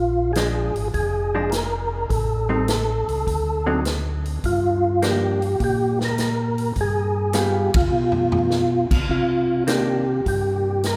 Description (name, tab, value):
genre	soul jazz organ trio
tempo	103 BPM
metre	4/4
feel	swing 69% on 8ths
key	unclear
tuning	A4 = 440 Hz
part	percussive tonewheel organ	melody	0.0-11.0 s	F4 to Bb4	-25 LUFS	equal	chorus vibrato, fast rotary speaker
part	mellow tonewheel organ	bass	0.0-11.0 s	F1 to C3	-27 LUFS	equal	chorus vibrato, slow rotary speaker
part	vintage hollow-body jazz guitar	accompaniment	0.4-10.0 s	D3 to Ab4	-31 LUFS	equal	none
part	swinging big-band drum kit	drums	0.4-11.0 s	crash cymbal, hi-hat, kick drum, ride cymbal, snare drum, toms	-27 LUFS	equal	none
room	moderate cathedral reverb, RT60 4.9 s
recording	recorded in a church or concert hall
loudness	-22 LUFS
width	mono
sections	0.0-11.0 A section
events	band accent 7.6; drum fill 7.9-8.5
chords	0.0 Bb7; 2.1 Am7b5; 3.3 D7b9; 4.4 Gm7; 6.8 G7b9; 9.1 Cm9